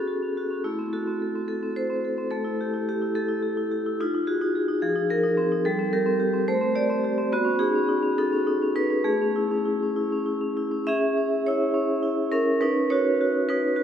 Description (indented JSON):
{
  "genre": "classical, contemporary piece for solo vibraphone",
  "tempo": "66-74 BPM (dotted quarters)",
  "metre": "6/8",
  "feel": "rubato",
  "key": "unclear",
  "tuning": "A4 = 435 Hz",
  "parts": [
    { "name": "vibraphone with medium hard mallets", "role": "solo", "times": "0.0-13.8 s", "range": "F3 to E5", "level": "-22 LUFS", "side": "equal", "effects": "none" }
  ],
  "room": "wet cathedral reverb, RT60 4.3 s",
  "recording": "none",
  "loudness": "-22 LUFS",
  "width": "side -9 dB against mid",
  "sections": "0.0-10.9 A section; 10.9-13.8 B section",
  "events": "none",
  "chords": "0.0 A69/B; 0.7 Am6; 2.3 Gsus2/A; 4.0 D#madd11; 4.8 Fm7; 5.7 Gmadd11; 6.5 Am7; 7.3 B9; 9.1 Amaj7; 10.9 C#m; 12.6 Badd9/C#"
}